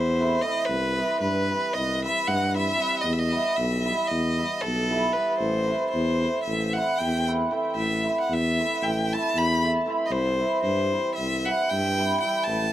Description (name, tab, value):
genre	balkan folk, Balkan wedding band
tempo	229 BPM (eighths)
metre	9/8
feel	straight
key	A dorian sharp4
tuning	A4 = 439 Hz
part	clear violin	melody	0.0-12.7 s	A4 to B5	-26 LUFS	left 1 dB	analog delay
part	hammered dulcimer	accompaniment	0.0-12.5 s	E3 to E4	-28 LUFS	right 2 dB	none
part	mellow tuba	bass	0.0-12.7 s	A1 to G2	-27 LUFS	equal	none
room	moderate small room reverb, RT60 0.5 s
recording	none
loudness	-22 LUFS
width	side -12 dB against mid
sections	0.0-12.7 A section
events	none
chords	0.0 Am; 0.7 C; 3.0 Em; 5.4 Am; 10.1 C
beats	0.16 0.42 | 0.69 0.95 1.21 1.47 1.73 1.99 2.25 2.52 2.78 | 3.04 3.30 3.56 3.82 4.09 4.35 4.61 4.87 5.13 | 5.39 5.66 5.92 6.18 6.44 6.70 6.96 7.23 7.49 | 7.75 8.01 8.28 8.54 8.80 9.06 9.32 9.59 9.85 | 10.11 10.37 10.63 10.89 11.16 11.42 11.68 11.94 12.20 | 12.46 12.72